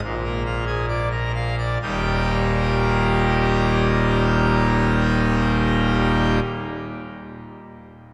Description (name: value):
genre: classical, organ toccata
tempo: 63 BPM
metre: 4/4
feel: straight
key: Eb major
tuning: A4 = 440 Hz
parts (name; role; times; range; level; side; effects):
- pipe organ, full organ; solo; 0.0-6.4 s; Eb1 to F5; -21 LUFS; equal; none
room: wet cathedral reverb, RT60 4.5 s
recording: none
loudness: -21 LUFS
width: mono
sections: 0.0-1.8 A section; 1.8-5.6 B section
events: slowing down 0.0-1.8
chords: 0.0 Bb7; 1.8 Eb